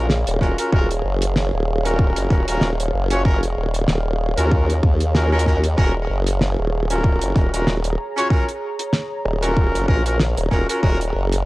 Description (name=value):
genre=glitch hop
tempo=95 BPM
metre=4/4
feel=swing 56% on 16ths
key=Eb minor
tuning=A4 = 440 Hz
part: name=bright horn section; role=stabs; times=0.0-11.0 s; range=Db4 to Db5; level=-24 LUFS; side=equal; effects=vintage 12-bit sampler grit, sidechain pumping, low-pass filter, tape echo
part: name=formant-sweep wobble bass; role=bass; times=0.0-11.5 s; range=Eb1 to Eb2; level=-20 LUFS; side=equal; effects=chorus, tube saturation
part: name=warbly tape-like pad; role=texture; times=0.0-11.5 s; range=Ab4 to Bb5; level=-29 LUFS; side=right 2 dB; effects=chorus, built-in reverb, sidechain pumping
part: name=damped 70s drum kit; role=drums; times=0.1-11.4 s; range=hi-hat, snare drum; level=-22 LUFS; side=equal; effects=none
part: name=electronic kick drum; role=drums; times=0.4-11.0 s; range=none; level=-18 LUFS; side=equal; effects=none
room=small room ambience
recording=dry, gritty hardware recording, cassette tape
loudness=-17 LUFS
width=side -20 dB against mid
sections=0.0-11.5 A section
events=none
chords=0.0 Ebm7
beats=0.10 | 0.73 1.36 1.99 2.62 | 3.25 3.88 4.52 5.15 | 5.78 6.41 7.04 7.67 | 8.31 8.94 9.57 10.20 | 10.83